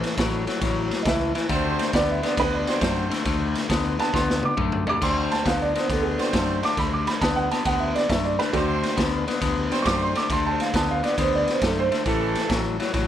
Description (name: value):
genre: electric blues shuffle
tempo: 136 BPM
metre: 4/4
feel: swing 68% on 8ths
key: D mixolydian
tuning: A4 = 444 Hz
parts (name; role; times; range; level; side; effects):
- dark upright piano; second line; 0.0-12.1 s; F#4 to D6; -26 LUFS; right 4 dB; plate reverb
- electric guitar at the edge of break-up; riff; 0.0-13.1 s; A2 to B3; -26 LUFS; left 6 dB; wide subtle chorus
- raw garage drum kit; drums; 0.0-13.1 s; crash cymbal, kick drum, ride cymbal, snare drum, toms; -27 LUFS; right 1 dB; none
- vintage muted fingered electric bass; bass; 0.2-13.1 s; A1 to F#2; -29 LUFS; right 1 dB; none
- warm horn section; stabs; 1.5-12.6 s; A3 to C5; -31 LUFS; right 3 dB; tape echo
room: light reverb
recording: none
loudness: -21 LUFS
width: side -10 dB against mid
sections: 0.0-5.0 A section; 5.0-13.1 A section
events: upright piano solo 0.0-13.1; drum fill 4.1-5.0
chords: 0.0 A; 1.5 D7; 12.1 A7